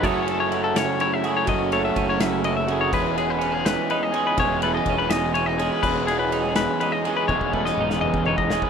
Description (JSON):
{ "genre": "math rock and midwest emo", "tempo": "83 BPM (dotted quarters)", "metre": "6/8", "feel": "straight", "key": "unclear", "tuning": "A4 = 440 Hz", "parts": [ { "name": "twelve-string electric guitar", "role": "accompaniment", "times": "0.0-8.7 s", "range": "E2 to G#4", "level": "-27 LUFS", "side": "right 8 dB", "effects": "spring reverb" }, { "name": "clean electric guitar", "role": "arpeggios", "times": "0.0-8.7 s", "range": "G#4 to E5", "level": "-25 LUFS", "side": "left 6 dB", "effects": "none" }, { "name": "raw garage guitar", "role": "riff", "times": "0.0-8.7 s", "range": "E3 to G#4", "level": "-24 LUFS", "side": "equal", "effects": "overdrive" }, { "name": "fuzz fingered electric bass", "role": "bass", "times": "0.0-8.6 s", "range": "E1 to F#1", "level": "-31 LUFS", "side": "equal", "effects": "overdrive" }, { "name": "loose indie drum kit", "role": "drums", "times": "0.0-8.7 s", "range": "crash cymbal, kick drum, ride cymbal, snare drum, toms", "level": "-30 LUFS", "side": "equal", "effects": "none" } ], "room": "light reverb, studio reverb", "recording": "rough home demo mix", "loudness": "-20 LUFS", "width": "side -7 dB against mid", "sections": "0.0-8.7 A section", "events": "drum fill 7.3-8.7", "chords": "0.0 F#m9; 2.9 C#m9/E" }